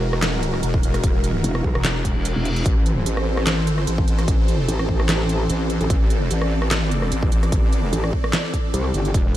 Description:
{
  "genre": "heavy wobble dubstep",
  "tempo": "148 BPM",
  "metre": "4/4",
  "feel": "swing 54% on 16ths, half-time",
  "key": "A phrygian",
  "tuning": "A4 = 440 Hz",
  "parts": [
    { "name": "supersaw pad", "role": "sustained chords", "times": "0.0-9.4 s", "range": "E3 to D5", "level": "-27 LUFS", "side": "equal", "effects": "phaser, sidechain pumping" },
    { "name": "wobble bass", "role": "bass", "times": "0.0-9.4 s", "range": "E1 to A1", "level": "-22 LUFS", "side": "equal", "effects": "chorus, overdrive" },
    { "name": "dubstep drum kit", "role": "drums", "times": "0.1-9.4 s", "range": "handclaps, hi-hat, rim click, snare drum", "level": "-25 LUFS", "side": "equal", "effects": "none" },
    { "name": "electronic kick drum", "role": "drums", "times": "0.7-9.2 s", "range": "none", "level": "-20 LUFS", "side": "equal", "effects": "none" },
    { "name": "metallic wobble bass", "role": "bass", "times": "1.4-9.1 s", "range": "E1 to C2", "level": "-21 LUFS", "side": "equal", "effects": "chorus, overdrive" },
    { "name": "reverse cymbal", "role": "sound effects", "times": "2.1-2.7 s", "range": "none", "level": "-34 LUFS", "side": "left 2 dB", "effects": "none" }
  ],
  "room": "little or no reverb",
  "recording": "dark, warm production",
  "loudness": "-18 LUFS",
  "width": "side -13 dB against mid",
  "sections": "0.0-9.4 A section",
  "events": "reverse cymbal 2.1-2.7",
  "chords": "0.0 Eadd9; 2.7 Am"
}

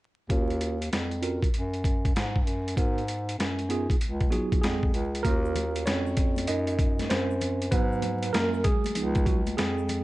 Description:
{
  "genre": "hip hop, jazz-hop",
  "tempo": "97 BPM",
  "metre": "4/4",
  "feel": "swing 66% on 16ths",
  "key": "Eb minor",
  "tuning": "A4 = 440 Hz",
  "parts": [
    { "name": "tine electric piano", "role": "accompaniment", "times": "0.3-10.0 s", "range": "F3 to Eb5", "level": "-30 LUFS", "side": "right 2 dB", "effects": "medium stereo tremolo, low-pass filter" },
    { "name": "warm bass clarinet", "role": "bass", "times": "0.3-10.0 s", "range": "Db2 to Ab2", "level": "-30 LUFS", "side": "equal", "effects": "none" },
    { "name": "boom bap sampler-style drum kit", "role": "drums", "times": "0.3-10.0 s", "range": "hi-hat, kick drum, snare drum", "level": "-27 LUFS", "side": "equal", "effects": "none" },
    { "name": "egg shaker and congas", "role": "percussion", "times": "5.2-10.0 s", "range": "none", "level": "-41 LUFS", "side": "left 8 dB", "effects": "none" }
  ],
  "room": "little or no reverb",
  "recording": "vinyl crackle, nothing above 10.9 kHz",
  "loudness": "-24 LUFS",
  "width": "side -18 dB against mid",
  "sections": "0.3-5.2 A section; 5.2-10.0 B section",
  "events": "filter sweep on tine electric piano 0.3-5.2; tine electric piano solo 5.2-10.0",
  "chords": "0.3 Ebm7; 2.8 Abm7; 4.0 Db7; 5.2 Ebm7; 7.7 Abm7; 9.0 Db7"
}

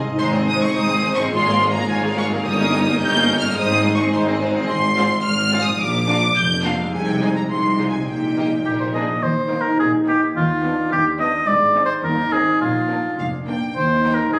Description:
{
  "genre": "cinematic, playful, whimsical film cue",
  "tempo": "106 BPM",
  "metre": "2/4",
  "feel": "straight",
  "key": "Ab major, Eb major from 4.7 s",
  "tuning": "A4 = 443 Hz",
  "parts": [
    { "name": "rich studio violin section", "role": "melody", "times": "0.0-14.1 s", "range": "Eb5 to G6", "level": "-24 LUFS", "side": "equal", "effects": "none" },
    { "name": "concert harp", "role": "arpeggios", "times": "0.0-14.4 s", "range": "G2 to Db5", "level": "-27 LUFS", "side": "equal", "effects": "none" },
    { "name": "warm symphonic violin section", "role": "second line", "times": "0.2-14.1 s", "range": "D4 to F5", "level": "-31 LUFS", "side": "equal", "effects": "none" },
    { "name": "rich studio viola section", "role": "accompaniment", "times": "0.2-14.1 s", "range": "G3 to Ab4", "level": "-28 LUFS", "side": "equal", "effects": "none" },
    { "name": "clear studio cello section", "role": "bass", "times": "0.2-14.4 s", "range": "Eb2 to Eb3", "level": "-29 LUFS", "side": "equal", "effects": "none" },
    { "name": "warm studio double bass section", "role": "bass", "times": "0.2-14.4 s", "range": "F1 to Eb2", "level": "-30 LUFS", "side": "equal", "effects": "none" },
    { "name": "warm tuba", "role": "bass", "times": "0.2-9.1 s", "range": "F1 to C2", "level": "-30 LUFS", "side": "equal", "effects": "none" },
    { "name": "clear oboe", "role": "second line", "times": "8.7-14.4 s", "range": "F4 to Eb5", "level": "-21 LUFS", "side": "equal", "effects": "none" }
  ],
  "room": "moderate scoring stage reverb, RT60 1.9 s",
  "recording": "recorded on a phone in the room, studio reverb",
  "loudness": "-19 LUFS",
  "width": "mono",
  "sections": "0.2-9.2 A section; 9.2-14.4 B section",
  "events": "none",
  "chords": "0.2 Ab; 1.3 Bbm7/Ab; 2.4 Eb7/G; 3.6 Ab; 4.7 Fm/Ab; 5.8 Bb; 6.9 Ab/C; 7.5 Fm7/C; 8.1 Eb/Bb; 8.7 Bb; 9.2 Eb; 10.4 G7/Eb; 11.5 Ab; 12.6 Bb; 13.8 Eb5"
}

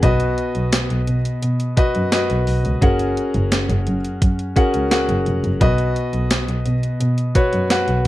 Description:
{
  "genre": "1980s-style pop",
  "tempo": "86 BPM",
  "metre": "4/4",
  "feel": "straight",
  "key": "unclear",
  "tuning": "A4 = 441 Hz",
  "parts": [
    { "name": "warm concert grand piano", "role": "accompaniment", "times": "0.0-8.1 s", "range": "B2 to F#5", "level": "-21 LUFS", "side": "left 1 dB", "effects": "none" },
    { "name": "warm double bass", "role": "bass", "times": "0.0-8.1 s", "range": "E#1 to B2", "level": "-20 LUFS", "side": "equal", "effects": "none" },
    { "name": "gated 80s digital drum machine", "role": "drums", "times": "0.0-8.1 s", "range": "hi-hat, kick drum, snare drum, tambourine", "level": "-19 LUFS", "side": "right 1 dB", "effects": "gated reverb, gated reverb snare" }
  ],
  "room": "little or no reverb",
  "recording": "dry, close 1970s-style studio recording",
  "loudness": "-16 LUFS",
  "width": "side -16 dB against mid",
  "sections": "0.0-8.1 A section",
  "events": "none",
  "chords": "0.0 B; 2.8 F#add9; 5.6 B"
}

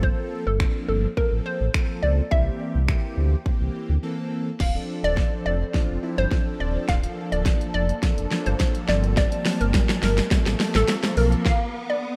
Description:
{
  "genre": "dance-pop",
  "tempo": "105 BPM",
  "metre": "4/4",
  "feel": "straight",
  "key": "unclear",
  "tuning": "A4 = 440 Hz",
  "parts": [
    { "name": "hollow square pluck", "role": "melody", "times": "0.0-12.2 s", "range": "A4 to F5", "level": "-30 LUFS", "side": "equal", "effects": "chorus, digital delay" },
    { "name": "big bright polysynth", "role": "accompaniment", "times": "0.0-11.5 s", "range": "E3 to A5", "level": "-32 LUFS", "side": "equal", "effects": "chorus, sidechain pumping" },
    { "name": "sub bass with octave", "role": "bass", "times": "0.0-11.4 s", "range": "D1 to D2", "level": "-26 LUFS", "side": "equal", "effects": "sidechain pumping" },
    { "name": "pop drum kit", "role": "drums", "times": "0.0-11.6 s", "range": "crash cymbal, finger snaps, hi-hat, kick drum, snare drum", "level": "-25 LUFS", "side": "equal", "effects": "none" },
    { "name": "airy breathy pad", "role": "sustained chords", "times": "5.3-11.4 s", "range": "F3 to A5", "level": "-40 LUFS", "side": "equal", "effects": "none" },
    { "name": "riser", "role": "sound effects", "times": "7.9-12.2 s", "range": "none", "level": "-38 LUFS", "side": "equal", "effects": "none" }
  ],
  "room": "light reverb",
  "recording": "rough home demo mix",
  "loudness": "-23 LUFS",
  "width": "mono",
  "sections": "0.0-4.6 A section; 4.6-12.2 B section",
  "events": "break 4.0-4.6; build-up 4.6-12.2; drum fill 4.6-11.5; riser 7.9-12.2; stop 11.5-12.2",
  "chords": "0.0 Gm11; 2.3 C7; 4.6 Dm7; 6.9 Bbmaj7/D; 8.9 Gm11; 11.5 N.C."
}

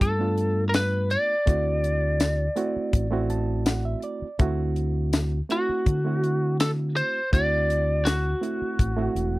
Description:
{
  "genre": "straight-eighth soul blues",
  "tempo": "82 BPM",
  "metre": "4/4",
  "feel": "straight",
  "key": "D mixolydian",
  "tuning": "A4 = 441 Hz",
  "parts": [
    { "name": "lightly driven lead guitar", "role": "melody", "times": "0.0-9.4 s", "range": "F#4 to D5", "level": "-26 LUFS", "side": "equal", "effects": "none" },
    { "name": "barky reed electric piano", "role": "accompaniment", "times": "0.0-9.4 s", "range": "A3 to A5", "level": "-30 LUFS", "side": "right 4 dB", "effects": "overdrive" },
    { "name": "fingered electric bass", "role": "bass", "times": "0.0-9.4 s", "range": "E1 to D3", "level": "-26 LUFS", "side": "equal", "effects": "none" },
    { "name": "tight funk drum kit", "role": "drums", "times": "0.0-9.3 s", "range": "hi-hat, kick drum, snare drum, tambourine", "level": "-23 LUFS", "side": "left 1 dB", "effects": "none" }
  ],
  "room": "little or no reverb",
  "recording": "dry, close 1970s-style studio recording",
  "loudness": "-22 LUFS",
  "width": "side -19 dB against mid",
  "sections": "0.0-9.4 A section",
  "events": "reed electric piano fill 2.9-4.4",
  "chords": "0.0 G9; 1.5 D9"
}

